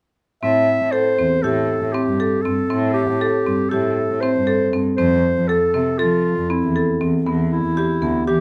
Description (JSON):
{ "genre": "contemporary instrumental, contemporary", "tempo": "238 BPM (eighths)", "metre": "9/8", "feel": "straight", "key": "A minor", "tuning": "A4 = 438 Hz", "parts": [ { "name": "warm clarinet", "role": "melody", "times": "0.4-8.4 s", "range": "E4 to E5", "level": "-23 LUFS", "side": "equal", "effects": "none" }, { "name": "marimba with medium hard mallets", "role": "arpeggios", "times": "0.4-8.4 s", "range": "B3 to A4", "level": "-23 LUFS", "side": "equal", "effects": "none" }, { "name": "dark cello", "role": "bass", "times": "0.4-8.4 s", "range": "D2 to F3", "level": "-25 LUFS", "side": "equal", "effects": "none" } ], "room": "moderate studio reverb, RT60 0.7 s", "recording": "none", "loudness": "-19 LUFS", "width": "mono", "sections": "0.4-8.4 A section", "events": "none", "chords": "0.4 Am7; 5.0 Fmaj7; 7.3 Em" }